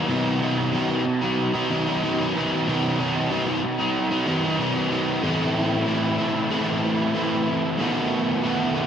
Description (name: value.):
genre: rock.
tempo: 94 BPM.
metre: 4/4.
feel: straight.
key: unclear.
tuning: A4 = 440 Hz.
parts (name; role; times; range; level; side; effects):
crunchy overdriven guitar; solo; 0.0-8.9 s; A2 to F#4; -21 LUFS; equal; analog chorus, tape echo.
room: wet huge ambient reverb, RT60 9.5 s.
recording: dreamy mix soaked in reverb.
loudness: -21 LUFS.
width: side -8 dB against mid.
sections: 0.0-5.2 A section; 5.2-8.9 B section.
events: none.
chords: 0.1 C; 5.2 Am; 7.8 B5.